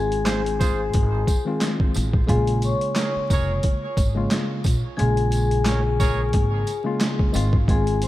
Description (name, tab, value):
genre	hip hop, boom-bap hip-hop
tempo	89 BPM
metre	4/4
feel	swing 55% on 16ths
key	Bb minor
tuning	A4 = 441 Hz
part	vibraphone with soft mallets	melody	0.0-8.1 s	Ab4 to Db6	-26 LUFS	left 4 dB	high-pass filter, low-pass filter, diffuse ambient delay
part	mellow tine electric piano	accompaniment	0.0-8.1 s	Db3 to F4	-27 LUFS	left 1 dB	medium stereo tremolo, cassette tape, high-pass filter, low-pass filter
part	upright bass	bass	0.0-8.0 s	F1 to Bb1	-23 LUFS	equal	none
part	boom bap sampler-style drum kit	drums	0.1-8.1 s	handclaps, hi-hat, kick drum, snare drum	-22 LUFS	equal	overdrive
part	warm trumpet section	stabs	0.2-6.2 s	F4 to Db5	-34 LUFS	right 4 dB	high-pass filter, low-pass filter, diffuse ambient delay
part	tambourine	percussion	0.6-8.1 s	none	-40 LUFS	right 4 dB	none
room	light reverb, studio ambience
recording	vinyl crackle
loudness	-19 LUFS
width	side -15 dB against mid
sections	0.0-8.1 A section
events	none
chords	0.0 Fm7/Ab; 2.3 Bbm7; 7.3 Fm7/Ab